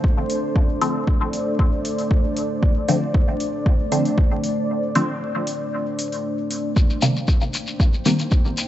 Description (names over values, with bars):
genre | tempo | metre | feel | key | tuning
dub techno | 116 BPM | 4/4 | straight | unclear | A4 = 440 Hz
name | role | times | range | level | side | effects
deep dark ambient pad | sustained chords | 0.0-8.7 s | A3 to G5 | -25 LUFS | equal | chorus, built-in reverb, sidechain pumping
electronic kick drum | drums | 0.0-8.4 s | none | -18 LUFS | equal | overdrive
electronic hi-hat | drums | 0.3-8.7 s | none | -32 LUFS | equal | overdrive
filtered dub chord stab | stabs | 0.8-8.2 s | C3 to C4 | -24 LUFS | left 1 dB | phaser, sidechain pumping, dub echo
shekere | percussion | 6.8-8.7 s | none | -28 LUFS | left 3 dB | none
room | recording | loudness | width
light reverb, digital ambience | echo-heavy mix, vinyl crackle, nothing above 7.9 kHz | -18 LUFS | side -12 dB against mid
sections
0.0-8.7 A section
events
filter sweep on synth stab 0.0-8.7; break 4.7-6.8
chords
0.0 Dm7; 6.8 Cm7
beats
0.04 | 0.56 1.07 1.59 2.11 | 2.62 3.14 3.66 4.18 | 4.69 5.21 5.73 6.25 | 6.76 7.28 7.80 8.31